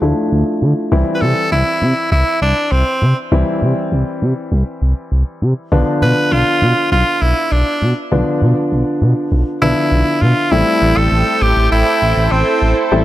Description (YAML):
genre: synth-pop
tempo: 100 BPM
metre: 4/4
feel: straight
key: A minor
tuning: A4 = 440 Hz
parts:
  - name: warm concert grand piano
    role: accompaniment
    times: 0.0-13.0 s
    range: D3 to E4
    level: -18 LUFS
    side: left 1 dB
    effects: none
  - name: smooth gliding synth bass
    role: bass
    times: 0.0-13.0 s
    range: A1 to D3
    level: -14 LUFS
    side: equal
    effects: none
  - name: raspy tenor saxophone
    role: melody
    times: 1.1-12.8 s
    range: C4 to B4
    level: -16 LUFS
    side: equal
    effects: tape echo
  - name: lush unison pad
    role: sustained chords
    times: 10.5-13.0 s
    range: E4 to A5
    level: -19 LUFS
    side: right 2 dB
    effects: chorus
room: light reverb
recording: transformer saturation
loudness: -12 LUFS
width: side -14 dB against mid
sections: 0.0-10.5 A section; 10.5-13.0 B section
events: none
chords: 0.0 Dmadd9; 0.9 C; 5.7 Bdim; 10.5 Am7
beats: 0.32 | 0.92 1.52 2.12 2.72 | 3.32 3.92 4.52 5.12 | 5.72 6.32 6.92 7.52 | 8.12 8.72 9.32 9.92 | 10.52 11.12 11.72 12.32 | 12.92